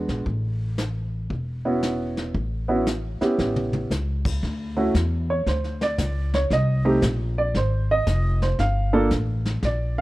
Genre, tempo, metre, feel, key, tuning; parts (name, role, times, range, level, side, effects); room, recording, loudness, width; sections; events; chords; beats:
jazz, small-group swing and bop; 115 BPM; 4/4; swing 67% on 8ths; A major; A4 = 441 Hz
warm baby grand piano; accompaniment; 0.0-10.0 s; G#3 to F5; -24 LUFS; right 2 dB
upright bass; bass; 0.0-10.0 s; E1 to E2; -24 LUFS; equal
vintage brush drum kit; drums; 0.1-10.0 s; brushed snare drum, crash cymbal, hi-hat, kick drum, snare drum, toms; -29 LUFS; equal
small room ambience; -21 LUFS; side -18 dB against mid
0.0-4.4 A section; 4.4-10.0 B section
drum fill 3.4-3.9
0.3 A6; 3.4 A7; 4.4 Dmaj7(no3); 6.5 Am7b5; 7.5 G#5; 8.6 Gm9
| 0.26 0.78 1.30 1.82 | 2.34 2.86 3.38 3.90 | 4.43 4.95 5.47 5.99 | 6.51 7.03 7.55 8.07 | 8.59 9.11 9.63